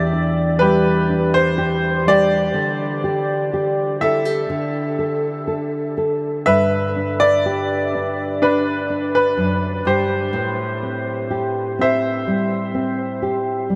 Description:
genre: acoustic folk-pop ballad.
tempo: 62 BPM.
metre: 4/4.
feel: straight.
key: G major.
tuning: A4 = 440 Hz.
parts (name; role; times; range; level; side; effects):
bright concert grand piano; melody; 0.0-13.7 s; D4 to E5; -22 LUFS; equal; none.
nylon-string guitar; accompaniment; 0.0-13.8 s; E2 to A4; -23 LUFS; equal; none.
room: wet huge ambient reverb, RT60 9.5 s.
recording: in a vast, echoing space.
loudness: -19 LUFS.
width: mono.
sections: 0.0-13.8 A section.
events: none.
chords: 0.0 Em7; 2.5 Dsus4; 4.5 Dsus2; 6.5 G; 10.3 Am7.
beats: 0.59 1.56 | 2.54 3.51 4.49 5.47 | 6.46 7.44 8.41 9.38 | 10.34 11.30 12.26 13.22.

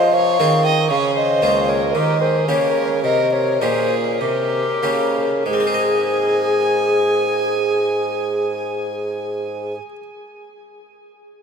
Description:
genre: classical, baroque-style sonata movement with continuo.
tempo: 47-61 BPM.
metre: 3/4.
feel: straight.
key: Ab major.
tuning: A4 = 439 Hz.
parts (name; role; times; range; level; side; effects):
mellow baroque flute; melody; 0.0-9.8 s; Ab4 to G5; -19 LUFS; left 2 dB; none.
warm violin; second line; 0.0-9.8 s; G4 to Ab5; -24 LUFS; right 5 dB; none.
harpsichord; accompaniment; 0.0-10.0 s; Db2 to Eb5; -24 LUFS; right 1 dB; none.
mellow bassoon; bass; 0.0-9.8 s; Db2 to F3; -23 LUFS; right 3 dB; none.
room: wet huge ambient reverb, RT60 7.4 s.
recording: in a vast, echoing space.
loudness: -16 LUFS.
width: side -6 dB against mid.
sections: 0.0-5.5 A section; 5.5-9.3 B section.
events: slowing down 0.0-5.5.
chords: 0.0 Fm; 0.9 Bbm7/Db; 1.9 Eb7; 5.5 Ab.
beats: 0.91 | 1.95 3.04 4.21 | 5.46 6.74 8.02.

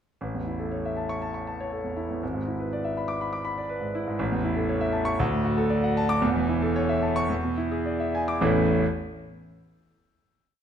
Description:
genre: classical, virtuoso piano study.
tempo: 102-123 BPM.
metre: 4/4.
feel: rubato.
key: A major.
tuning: A4 = 440 Hz.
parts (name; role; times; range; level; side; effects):
clear concert grand piano; solo; 0.2-8.8 s; E1 to D6; -24 LUFS; equal; none.
room: wet recital hall reverb, RT60 1.4 s.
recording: none.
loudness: -24 LUFS.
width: side -8 dB against mid.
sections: 0.2-8.4 A section; 8.4-10.6 final chord.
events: slowing down 3.2-8.4.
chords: 0.2 A; 2.2 E7/G#; 4.2 A; 5.2 D; 6.2 A/E; 7.3 E7; 8.4 A.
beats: | 0.21 0.72 1.22 1.72 | 2.22 2.71 3.20 3.70 | 4.20 4.70 5.21 5.73 | 6.24 6.77 7.30 7.86 | 8.43.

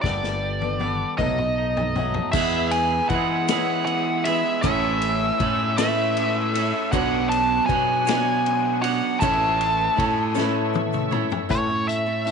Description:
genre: folk rock and heartland rock.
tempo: 52 BPM (dotted quarters).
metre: 6/8.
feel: straight.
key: A major.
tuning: A4 = 440 Hz.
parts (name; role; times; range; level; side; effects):
nasal lead guitar with a parked wah; melody; 0.0-12.3 s; C#5 to A5; -24 LUFS; equal; overdrive.
picked swing-style acoustic guitar; accompaniment; 0.0-12.3 s; A2 to A4; -29 LUFS; left 12 dB; none.
twangy electric guitar; riff; 0.0-12.3 s; E2 to C#5; -27 LUFS; right 16 dB; spring reverb.
modern bright fingered electric bass; bass; 0.0-12.3 s; G1 to E3; -28 LUFS; equal; none.
vintage drum kit; drums; 0.0-12.3 s; crash cymbal, hi-hat, kick drum, ride cymbal, snare drum, toms; -28 LUFS; left 5 dB; none.
warm grand piano; accompaniment; 2.3-11.3 s; B3 to C#5; -33 LUFS; right 12 dB; none.
bright tonewheel organ; sustained chords; 2.3-11.5 s; G#4 to E6; -36 LUFS; equal; none.
egg shaker; percussion; 2.3-11.4 s; none; -42 LUFS; left 20 dB; none.
room: light reverb, small room ambience.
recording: 1960s-style stereo with parts hard left and right, nothing above 10.3 kHz.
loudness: -20 LUFS.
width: side -6 dB against mid.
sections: 0.0-2.3 A section; 2.3-11.5 B section.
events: drum fill 0.0-2.3, 10.4-11.5.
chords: 0.0 Gadd9; 1.2 B7; 2.3 E; 4.6 A; 6.9 Bmadd9; 9.2 A.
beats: | 0.04 1.19 | 2.35 3.50 | 4.64 5.79 | 6.94 8.08 | 9.22 10.37 | 11.51.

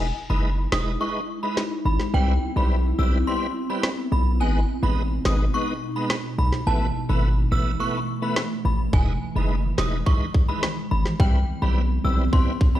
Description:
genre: dancehall.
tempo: 106 BPM.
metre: 4/4.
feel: straight.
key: E major.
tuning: A4 = 440 Hz.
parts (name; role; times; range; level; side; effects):
bright tonewheel organ; accompaniment; 0.0-12.8 s; G3 to B4; -29 LUFS; equal; chorus vibrato, slow rotary speaker.
ethereal airy pad; sustained chords; 0.2-12.8 s; B2 to E4; -29 LUFS; equal; ensemble chorus, built-in reverb, sidechain pumping.
hard-hitting 808-style bass; bass; 0.0-12.3 s; E1 to C2; -21 LUFS; equal; none.
synth chime; melody; 0.3-12.8 s; G5 to E6; -30 LUFS; equal; ensemble chorus, phaser, tape echo.
island pop drum kit; drums; 0.7-12.7 s; kick drum, snare drum; -21 LUFS; equal; none.
room: light reverb.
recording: played on a big sound system in a bare room, stone room reverb.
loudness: -20 LUFS.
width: side -13 dB against mid.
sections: 0.0-12.8 A section.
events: break 0.0-8.9.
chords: 0.0 Emaj7; 2.1 Cmaj7; 4.4 G#m; 6.7 Asus2; 8.9 Emaj7; 11.2 Cmaj7.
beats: 0.44 1.01 1.57 | 2.14 2.71 3.27 3.84 | 4.40 4.97 5.54 6.10 | 6.67 7.23 7.80 8.37 | 8.93 9.50 10.06 10.63 | 11.20 11.76 12.33.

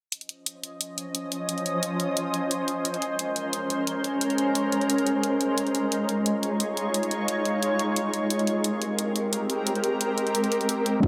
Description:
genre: liquid drum and bass.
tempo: 176 BPM.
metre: 4/4.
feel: straight.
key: Ab major.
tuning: A4 = 440 Hz.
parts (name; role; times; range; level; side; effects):
shimmering ambient pad; sustained chords; 0.9-11.1 s; F3 to Eb5; -34 LUFS; equal; none.
electronic hi-hat; drums; 0.1-11.1 s; none; barely audible; none; none.
deep mellow chord stab; accompaniment; 11.0-11.1 s; Ab3 to Eb4; -21 LUFS; equal; chorus.
electronic kick drum; drums; 11.0-11.1 s; none; -24 LUFS; equal; small room ambience.
room: little or no reverb.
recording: none.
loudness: -27 LUFS.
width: mono.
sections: 0.1-11.1 A section.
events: none.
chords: 0.1 Dbmaj9; 2.9 Bbm9; 5.6 Eb9sus4; 8.3 Abmaj9.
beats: | 0.12 0.46 0.81 1.15 | 1.49 1.83 2.17 2.51 | 2.85 3.19 3.53 3.87 | 4.21 4.55 4.90 5.24 | 5.58 5.92 6.26 6.60 | 6.94 7.28 7.62 7.96 | 8.30 8.65 8.99 9.33 | 9.67 10.01 10.35 10.69 | 11.03.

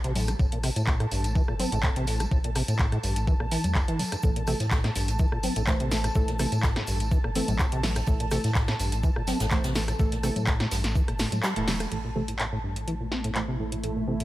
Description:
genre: acid house.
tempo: 125 BPM.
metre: 4/4.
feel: straight.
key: A phrygian.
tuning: A4 = 439 Hz.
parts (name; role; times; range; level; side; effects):
acid bass, saw; riff; 0.0-14.2 s; G2 to C4; -31 LUFS; equal; analog chorus, sidechain pumping, dub echo.
saturated sub bass; bass; 0.0-14.2 s; E1 to A2; -30 LUFS; equal; tube saturation, sidechain pumping.
electro analog drum machine; drums; 0.0-14.2 s; congas, handclaps, hi-hat, rim click, snare drum; -31 LUFS; left 1 dB; none.
granular cloud pad; texture; 0.1-14.2 s; A3 to A5; -36 LUFS; right 1 dB; built-in reverb, sidechain pumping.
tambourine; percussion; 0.2-11.9 s; none; -40 LUFS; right 3 dB; none.
electronic kick drum; drums; 0.4-11.1 s; none; -24 LUFS; equal; overdrive.
deep mellow chord stab; stabs; 4.2-14.2 s; E3 to C5; -33 LUFS; right 2 dB; chorus, dub echo.
jazz brush drum kit; drums; 4.2-11.8 s; hi-hat, shaker, snare drum; -42 LUFS; right 1 dB; sidechain pumping on hats, high-pass filter on hats, high-pass filter on snare, sidechain pumping on perc, high-pass filter on perc, high-pass filter on room.
room: studio reverb.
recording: none.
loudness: -24 LUFS.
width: side -16 dB against mid.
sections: 0.0-11.9 A section; 11.9-14.2 B section.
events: filter sweep on acid bass 0.0-11.9; kick drops out 11.4-11.9; band accent 11.4; filter sweep on synth stab 11.9-14.2.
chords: 0.0 A5.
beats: | 0.40 0.88 1.36 1.84 | 2.32 2.80 3.28 3.76 | 4.24 4.72 5.20 5.68 | 6.16 6.64 7.12 7.60 | 8.08 8.56 9.04 9.52 | 10.00 10.48 10.96 11.44 | 11.92 12.40 12.88 13.36 | 13.84.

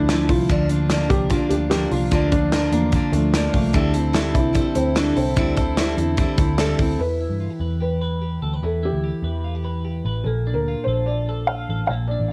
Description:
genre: jangly indie pop.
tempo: 147 BPM.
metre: 4/4.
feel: straight.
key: unclear.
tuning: A4 = 440 Hz.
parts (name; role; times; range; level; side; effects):
felt-muted upright piano; melody; 0.0-12.3 s; A3 to F5; -27 LUFS; equal; cassette tape.
picked steel-string acoustic guitar; accompaniment; 0.0-7.0 s; D3 to A4; -26 LUFS; equal; none.
twelve-string electric guitar; arpeggios; 0.0-12.3 s; Bb2 to B4; -30 LUFS; equal; lush chorus.
vintage muted picked electric bass; bass; 0.0-12.3 s; A1 to G2; -26 LUFS; equal; none.
modern studio drum kit; drums; 0.1-6.9 s; hi-hat, kick drum, snare drum; -25 LUFS; equal; cassette tape.
room: little or no reverb.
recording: home recording on cassette.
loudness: -21 LUFS.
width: mono.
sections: 0.0-7.0 A section; 7.0-12.3 B section.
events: none.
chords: 0.5 Bb; 3.7 Am7; 7.0 Em; 10.3 Bbmaj7.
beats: 0.08 | 0.49 0.90 1.30 1.71 | 2.12 2.52 2.93 3.34 | 3.75 4.15 4.56 4.96 | 5.37 5.78 6.18 6.59 | 7.00 7.41 7.82 8.22 | 8.63 9.04 9.45 9.86 | 10.27 10.67 11.08 11.49 | 11.90 12.31.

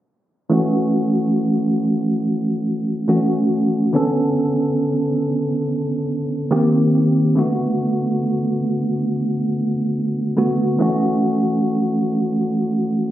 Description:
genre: R&B.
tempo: 70 BPM.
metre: 4/4.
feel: straight.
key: F# minor.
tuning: A4 = 439 Hz.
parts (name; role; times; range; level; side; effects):
bell-like tine electric piano; solo; 0.5-13.1 s; D3 to A4; -17 LUFS; equal; medium stereo tremolo, digital delay.
room: moderate lush hall reverb, RT60 2.9 s.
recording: recorded on a phone in the room, studio reverb, low-pass filter.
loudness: -17 LUFS.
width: side -13 dB against mid.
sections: 0.5-13.1 A section.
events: filter sweep 0.5-13.1.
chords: 0.5 F#m7; 3.9 Bm9; 6.5 D#6; 7.4 D6; 10.8 A6.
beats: | 0.51 1.36 2.22 3.08 | 3.94 4.79 5.65 6.51 | 7.36 8.22 9.08 9.94 | 10.79 11.65 12.51.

